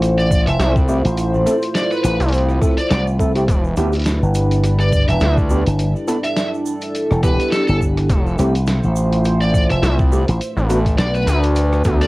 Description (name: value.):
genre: glitch hop.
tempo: 104 BPM.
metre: 4/4.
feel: swing 56% on 16ths.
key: E phrygian.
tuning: A4 = 441 Hz.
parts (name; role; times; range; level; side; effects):
dark analog pad; sustained chords; 0.0-12.1 s; G3 to C5; -23 LUFS; equal; chorus, phaser, vintage 12-bit sampler grit, sidechain pumping, cassette tape.
slap bass with an envelope filter; bass; 0.0-11.3 s; E1 to D2; -17 LUFS; equal; none.
boom bap sampler-style drum kit; drums; 0.0-12.1 s; hi-hat, rim click, snare drum; -26 LUFS; equal; cassette tape.
egg shaker; percussion; 0.0-12.1 s; none; -39 LUFS; right 6 dB; none.
high-gain lead guitar; melody; 0.2-12.1 s; A4 to E5; -25 LUFS; right 1 dB; distortion, vintage 12-bit sampler grit, cassette tape, tape echo.
electronic kick drum; drums; 0.3-12.0 s; none; -18 LUFS; equal; cassette tape.
gritty driven synth bass; bass; 0.6-12.1 s; E1 to D2; -16 LUFS; equal; distortion.
overdriven tine electric piano; stabs; 0.9-12.1 s; A3 to B4; -22 LUFS; equal; ensemble chorus, sidechain pumping, cassette tape, tape echo.
room: moderate studio ambience, RT60 0.5 s.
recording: home recording on cassette.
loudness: -14 LUFS.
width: side -20 dB against mid.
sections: 0.0-12.1 A section.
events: none.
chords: 0.0 Fmaj7; 3.5 Em7; 8.1 Fmaj7; 10.4 Bm7.